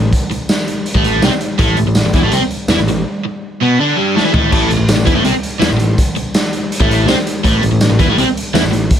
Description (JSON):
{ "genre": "indie rock", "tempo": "164 BPM", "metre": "4/4", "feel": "straight", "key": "A minor", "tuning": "A4 = 439 Hz", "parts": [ { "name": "crunchy overdriven guitar", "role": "riff", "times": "0.0-8.9 s", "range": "G2 to E4", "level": "-14 LUFS", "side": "equal", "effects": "none" }, { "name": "modern bright picked electric bass", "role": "bass", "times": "0.0-8.9 s", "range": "A1 to E2", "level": "-17 LUFS", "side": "equal", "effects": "none" }, { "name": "raw garage drum kit", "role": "drums", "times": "0.1-9.0 s", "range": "crash cymbal, hi-hat, kick drum, snare drum, tambourine, toms", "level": "-15 LUFS", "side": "equal", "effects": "none" } ], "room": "light reverb", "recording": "none", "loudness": "-11 LUFS", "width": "side -9 dB against mid", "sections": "0.0-4.5 A section; 4.5-9.0 B section", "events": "drum fill 4.2-4.5", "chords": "0.0 A5; 4.5 Am" }